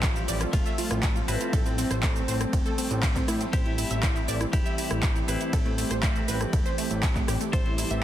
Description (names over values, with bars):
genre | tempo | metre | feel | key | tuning
progressive house | 120 BPM | 4/4 | straight | A minor | A4 = 439 Hz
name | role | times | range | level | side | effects
clean electric guitar | melody | 0.0-8.0 s | A3 to C5 | -35 LUFS | left 1 dB | tremolo, sidechain pumping, dub echo
airy breathy pad | sustained chords | 0.0-8.0 s | E3 to A4 | -34 LUFS | left 1 dB | chorus, sidechain pumping
wide unison pluck | arpeggios | 0.0-8.0 s | A3 to E5 | -32 LUFS | right 2 dB | sidechain pumping, tape echo
fat analog bass | bass | 0.0-8.0 s | E1 to A2 | -31 LUFS | equal | sidechain pumping
deep house drum kit | drums | 0.0-8.0 s | handclaps, hi-hat, ride cymbal, rim click, shaker | -32 LUFS | right 1 dB | overdrive
electronic kick drum | drums | 0.0-7.6 s | none | -26 LUFS | equal | overdrive
room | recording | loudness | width
digital ambience | dense, heavily limited modern master | -24 LUFS | side -12 dB against mid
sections
0.0-8.0 A section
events
none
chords
0.0 Fadd9; 3.5 Am7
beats
0.03 0.53 1.03 | 1.53 2.03 2.53 3.03 | 3.53 4.03 4.53 5.03 | 5.53 6.03 6.53 7.03 | 7.53 8.03